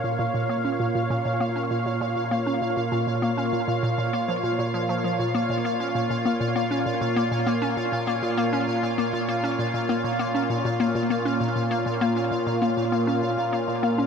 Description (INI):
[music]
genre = ambient, sequencer-driven space music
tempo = 99 BPM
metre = 4/4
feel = straight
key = Bb minor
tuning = A4 = 440 Hz
[part]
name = sweeping resonant pad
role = sustained chords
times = 0.0-14.1 s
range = Bb2 to F5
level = -25 LUFS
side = right 1 dB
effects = chorus
[part]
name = hollow square pluck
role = riff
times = 0.0-14.1 s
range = Bb2 to Db4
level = -26 LUFS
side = left 1 dB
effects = chorus, tape echo
[part]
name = pulsing gated texture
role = texture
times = 0.0-14.1 s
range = F5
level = -34 LUFS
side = right 3 dB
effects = chorus, built-in reverb
[sound]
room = wet huge ambient reverb, RT60 9.3 s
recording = dark, warm production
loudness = -22 LUFS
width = side -6 dB against mid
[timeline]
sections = 0.0-14.1 A section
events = none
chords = 0.0 Bbm